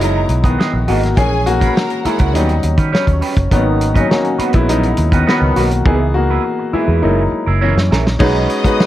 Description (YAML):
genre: lush 1970s-style soul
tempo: 102 BPM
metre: 4/4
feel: straight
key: unclear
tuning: A4 = 440 Hz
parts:
  - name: warm studio string section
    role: second line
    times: 0.0-2.6, 8.2-8.9 s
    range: F#4 to D#6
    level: -24 LUFS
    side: left 2 dB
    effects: none
  - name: warm grand piano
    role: accompaniment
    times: 0.0-8.9 s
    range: D#3 to B4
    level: -17 LUFS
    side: left 2 dB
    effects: none
  - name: electric guitar through a small old amp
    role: riff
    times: 0.0-8.8 s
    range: C#4 to D#5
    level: -22 LUFS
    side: right 8 dB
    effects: wah
  - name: vintage muted fingered electric bass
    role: bass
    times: 0.0-8.5 s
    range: F#1 to D#3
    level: -16 LUFS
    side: equal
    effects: none
  - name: warm soul drum kit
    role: drums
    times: 0.0-8.9 s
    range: crash cymbal, hi-hat, kick drum, snare drum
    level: -16 LUFS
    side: equal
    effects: none
  - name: mellow trombone section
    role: stabs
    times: 3.5-8.4 s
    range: D#3 to D#4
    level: -20 LUFS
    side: equal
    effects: none
room: small room ambience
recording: none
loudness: -12 LUFS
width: side -13 dB against mid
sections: 0.0-8.2 A section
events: grand piano solo 0.0-8.2; drum fill 5.9-8.2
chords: 0.0 Emaj9; 1.2 A#m7b5; 2.3 D#7alt; 3.5 G#m11; 5.9 C#m7; 7.0 F#9; 8.2 B6